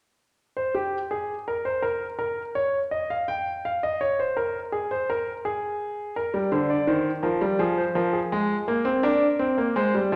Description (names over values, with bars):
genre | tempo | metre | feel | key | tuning
classical, baroque-style two-part invention for grand piano | 83 BPM | 4/4 | straight | unclear | A4 = 439 Hz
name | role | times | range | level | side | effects
warm concert grand piano | solo | 0.6-10.2 s | D3 to G5 | -26 LUFS | equal | none
room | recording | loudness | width
wet recital hall reverb, RT60 1.4 s | none | -26 LUFS | mono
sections
0.4-10.2 A section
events
none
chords
0.4 N.C.; 6.2 Eb; 7.6 Fm; 9.0 Bb7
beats
| 0.37 1.11 1.84 2.56 | 3.29 4.02 4.73 5.45 | 6.16 6.87 7.59 8.31 | 9.03 9.75